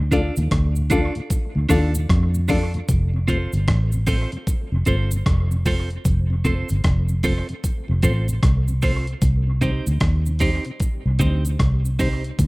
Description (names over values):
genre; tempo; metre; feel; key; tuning
roots reggae; 76 BPM; 4/4; swing 62% on 16ths; F mixolydian; A4 = 440 Hz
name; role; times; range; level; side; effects
mellow tonewheel organ; accompaniment; 0.0-12.1 s; D2 to D4; -31 LUFS; left 1 dB; slow rotary speaker, dub echo
vintage muted fingered electric bass; bass; 0.0-12.5 s; F1 to F2; -20 LUFS; equal; none
clean electric guitar; accompaniment; 0.1-12.2 s; C4 to D5; -27 LUFS; right 2 dB; tape echo
dark upright piano; stabs; 0.1-2.7 s; D4 to A4; -26 LUFS; left 3 dB; none
breakbeat sampler-style drum kit; drums; 0.1-12.5 s; hi-hat, kick drum, rim click; -22 LUFS; equal; none
cabasa; percussion; 0.1-12.5 s; none; -36 LUFS; right 3 dB; none
room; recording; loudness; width
little or no reverb; rough home demo mix; -18 LUFS; side -23 dB against mid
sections
0.0-2.9 A section; 2.9-12.5 B section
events
none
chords
0.0 Dm; 2.9 F; 9.2 Cm